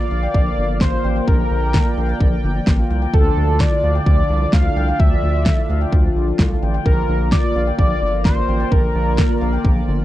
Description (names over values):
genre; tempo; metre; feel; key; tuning
synth-pop; 129 BPM; 4/4; straight; unclear; A4 = 440 Hz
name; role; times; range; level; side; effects
wide unison lead; melody; 0.0-9.6 s; A4 to F5; -23 LUFS; equal; analog delay, plate reverb
chorused pulse-width pad; sustained chords; 0.0-10.0 s; D3 to G5; -25 LUFS; equal; plate reverb
handpan; arpeggios; 0.0-10.0 s; D3 to G5; -25 LUFS; left 1 dB; analog delay
round analog bass; bass; 0.1-10.0 s; G1 to D2; -20 LUFS; equal; none
pop drum kit; drums; 0.3-9.8 s; kick drum, snare drum; -17 LUFS; equal; vintage 12-bit sampler grit
room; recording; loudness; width
light reverb; dark, warm production; -15 LUFS; side -14 dB against mid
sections
0.0-10.0 A section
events
none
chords
0.0 Bb; 3.1 Dmadd9; 6.9 Bb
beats
0.35 0.81 | 1.28 1.74 2.21 2.67 | 3.14 3.60 4.07 4.53 | 5.00 5.46 5.93 6.39 | 6.86 7.32 7.79 8.25 | 8.72 9.18 9.65